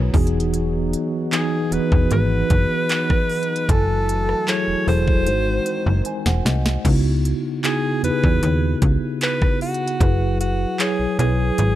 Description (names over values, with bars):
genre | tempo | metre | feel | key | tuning
contemporary R&B | 76 BPM | 4/4 | straight | C# minor | A4 = 440 Hz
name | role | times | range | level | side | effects
bright alto saxophone | melody | 0.0-11.8 s | F#4 to C#5 | -24 LUFS | equal | none
mellow tine electric piano | accompaniment | 0.0-11.8 s | C#3 to G#5 | -23 LUFS | equal | medium stereo tremolo
dark brass ensemble | sustained chords | 0.0-6.8 s | D#3 to F#4 | -32 LUFS | equal | none
slap-like FM bass | bass | 0.0-11.8 s | E1 to E2 | -20 LUFS | equal | none
trap drum kit | drums | 0.1-11.8 s | crash cymbal, handclaps, hi-hat, kick drum, rim click, snare drum | -21 LUFS | equal | overdrive
room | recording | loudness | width
digital ambience | dark, warm production | -17 LUFS | side -13 dB against mid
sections
0.0-6.8 A section; 6.8-11.8 A section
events
drum fill 5.3-6.8; tine electric piano fill 5.7-6.8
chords
0.1 Emaj9; 3.7 F#m9; 5.3 G#7; 6.8 C#m11; 10.0 F#9sus4